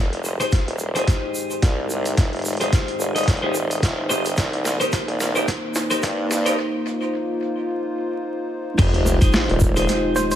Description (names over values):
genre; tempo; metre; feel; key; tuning
glitch hop; 109 BPM; 4/4; swing 56% on 16ths; F minor; A4 = 439 Hz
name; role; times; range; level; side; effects
dark analog pad; sustained chords; 0.0-10.4 s; Ab3 to G5; -26 LUFS; equal; chorus, sidechain pumping
formant-sweep wobble bass; bass; 0.0-9.9 s; Eb1 to G2; -24 LUFS; equal; chorus, overdrive, high-pass filter
boom bap sampler-style drum kit; drums; 0.1-10.4 s; crash cymbal, hi-hat, snare drum; -27 LUFS; equal; high-pass filter on hats, high-pass filter on snare, high-pass filter on cymbals, high-pass filter on room, tape echo
tube shaker; percussion; 0.2-10.4 s; none; -32 LUFS; right 2 dB; tape echo
twelve-string electric guitar; stabs; 0.4-10.4 s; Eb4 to Eb5; -25 LUFS; left 2 dB; spring reverb, sidechain pumping, low-pass filter, tape echo
electronic kick drum; drums; 0.5-9.7 s; none; -18 LUFS; equal; none
sub drop; sound effects; 8.9-10.4 s; none; -25 LUFS; equal; none
woody wave-folded pluck; melody; 10.2-10.4 s; C5; -21 LUFS; right 3 dB; chorus, vintage 12-bit sampler grit
room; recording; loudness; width
light reverb; echo-heavy mix, vinyl crackle, high-pass filter; -19 LUFS; side -11 dB against mid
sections
0.0-8.8 A section; 8.8-10.4 B section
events
build-up 0.0-8.8; drum fill 0.0-6.6; filter sweep on analog synth pad 0.0-8.8; break 6.6-8.8; drop 8.8-10.4; impact 8.8-10.4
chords
0.0 Fm7; 4.4 Cm7; 8.8 Fm7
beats
0.53 1.08 1.63 | 2.18 2.73 3.28 3.83 | 4.38 4.93 5.48 6.03 | 6.58 7.13 7.68 8.23 | 8.78 9.33 9.88